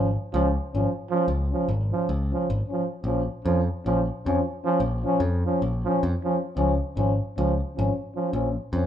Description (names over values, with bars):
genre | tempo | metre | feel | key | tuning
balkan folk, Balkan brass band | 306 BPM (eighths) | 9/8 | straight | unclear | A4 = 440 Hz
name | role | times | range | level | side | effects
clear euphonium | accompaniment | 0.0-8.9 s | Db4 | -28 LUFS | left 5 dB | none
warm trombone | accompaniment | 0.0-8.9 s | F3 | -27 LUFS | right 5 dB | none
modern bright picked electric bass | bass | 0.0-8.9 s | Ab1 to F2 | -26 LUFS | equal | none
room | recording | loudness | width
wet large studio reverb, RT60 0.9 s | band playing live in one room | -23 LUFS | side -10 dB against mid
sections
0.0-8.9 A section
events
none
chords
0.0 Db; 3.0 Bbm; 6.6 Db; 8.3 Bbm